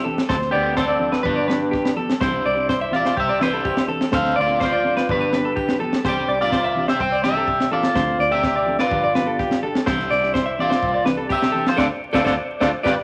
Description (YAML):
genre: highlife guitar band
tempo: 125 BPM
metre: 4/4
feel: straight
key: C major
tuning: A4 = 440 Hz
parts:
  - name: electric guitar at the edge of break-up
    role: melody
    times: 0.0-12.9 s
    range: B3 to G5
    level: -24 LUFS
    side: equal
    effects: none
  - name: clean electric guitar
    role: arpeggios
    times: 0.0-12.9 s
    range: G4 to E5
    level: -25 LUFS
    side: equal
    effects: spring reverb
  - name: fingered electric bass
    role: bass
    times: 0.0-12.9 s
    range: G1 to D2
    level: -35 LUFS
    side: equal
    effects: none
  - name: mellow electric guitar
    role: accompaniment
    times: 0.1-12.9 s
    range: E3 to A4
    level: -32 LUFS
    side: equal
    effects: none
  - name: tight funk drum kit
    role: drums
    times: 0.2-13.0 s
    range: kick drum, snare drum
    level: -26 LUFS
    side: equal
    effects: none
room: moderate large studio reverb, RT60 0.9 s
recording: vinyl crackle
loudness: -20 LUFS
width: mono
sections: 0.0-13.0 A section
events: band accent 11.8-13.0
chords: 0.3 Dm7; 1.3 G7; 2.2 Cadd9; 4.1 Dm7; 5.1 G7; 6.0 Cadd9; 8.0 Dm7; 8.9 G7; 9.9 Cadd9; 11.8 Dm7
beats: | 0.30 0.77 1.25 1.73 | 2.21 2.69 3.16 3.64 | 4.12 4.60 5.08 5.56 | 6.04 6.52 7.00 7.47 | 7.95 8.43 8.91 9.39 | 9.87 10.35 10.82 11.30 | 11.78 12.26 12.73